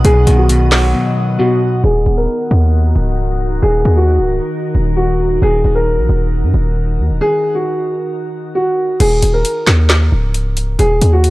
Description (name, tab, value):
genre	hip hop, trap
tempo	134 BPM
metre	4/4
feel	half-time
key	Eb minor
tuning	A4 = 440 Hz
part	dark concert grand piano	melody	0.0-11.3 s	F#4 to Bb4	-17 LUFS	equal	low-pass filter, tape echo
part	electric guitar at the edge of break-up	accompaniment	0.0-1.8 s	B2 to F#3	-16 LUFS	left 1 dB	none
part	glassy FM pad	sustained chords	0.0-9.0 s	Eb3 to D#6	-22 LUFS	equal	ensemble chorus, built-in reverb, low-pass filter
part	hard-hitting 808-style bass	bass	0.0-11.3 s	Db1 to Gb2	-12 LUFS	equal	none
part	trap drum kit	drums	0.0-0.8, 9.0-11.3 s	crash cymbal, handclaps, hi-hat, snare drum	-17 LUFS	equal	none
room	little or no reverb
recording	dry, gritty hardware recording, cassette tape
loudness	-12 LUFS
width	side -19 dB against mid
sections	0.0-1.8 A section; 1.8-9.0 B section; 9.0-11.3 C section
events	break 0.9-1.8, 7.2-9.0; filter sweep 1.8-9.0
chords	0.0 B; 1.8 Ebm; 9.0 Eb5